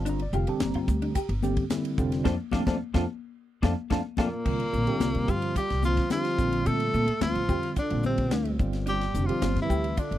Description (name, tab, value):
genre	electric jazz fusion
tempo	109 BPM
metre	4/4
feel	straight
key	F major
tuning	A4 = 440 Hz
part	tine electric piano	accompaniment	0.0-10.0 s	D3 to Bb5	-30 LUFS	right 1 dB	overdrive, fast stereo tremolo, phaser
part	upright bass	bass	0.0-10.2 s	F1 to C3	-29 LUFS	equal	none
part	mellow electric guitar	stabs	0.1-10.1 s	C4 to A4	-34 LUFS	left 2 dB	analog chorus
part	tight funk drum kit	drums	0.1-10.2 s	crash cymbal, hi-hat, kick drum, ride cymbal, snare drum	-31 LUFS	equal	none
part	congas	percussion	0.1-10.0 s	none	-34 LUFS	left 10 dB	none
part	warm tenor saxophone	melody	4.2-10.2 s	Bb3 to A4	-30 LUFS	left 2 dB	none
part	mellow trombone	second line	4.2-10.2 s	Bb2 to A3	-34 LUFS	right 7 dB	none
room	little or no reverb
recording	dry, close 1970s-style studio recording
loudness	-24 LUFS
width	side -13 dB against mid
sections	0.0-4.5 A section; 4.5-10.2 B section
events	drum fill 2.3-4.5; band accent 2.3-4.5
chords	0.0 Gm7; 2.0 F6; 4.5 C9sus4; 6.4 Bbmaj9; 8.6 G5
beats	| 0.06 0.61 1.16 1.71 | 2.25 2.81 3.36 3.91 | 4.46 5.01 5.56 6.11 | 6.67 7.22 7.77 8.32 | 8.87 9.43 9.98